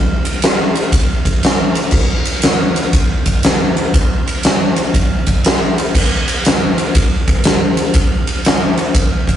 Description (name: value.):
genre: rock.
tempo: 120 BPM.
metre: 4/4.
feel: swing 66% on 8ths.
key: none.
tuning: none.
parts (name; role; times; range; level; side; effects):
huge arena drum kit; drums; 0.2-9.4 s; crash cymbal, kick drum, ride cymbal, snare drum; -12 LUFS; equal; none.
room: light reverb.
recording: rough rehearsal-room recording, tube saturation, nothing above 11.0 kHz.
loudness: -12 LUFS.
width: side -10 dB against mid.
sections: 0.0-9.4 A section.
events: none.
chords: none.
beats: 0.42 0.93 1.43 | 1.94 2.44 2.94 3.45 | 3.95 4.45 4.95 5.45 | 5.95 6.45 6.95 7.45 | 7.95 8.45 8.94.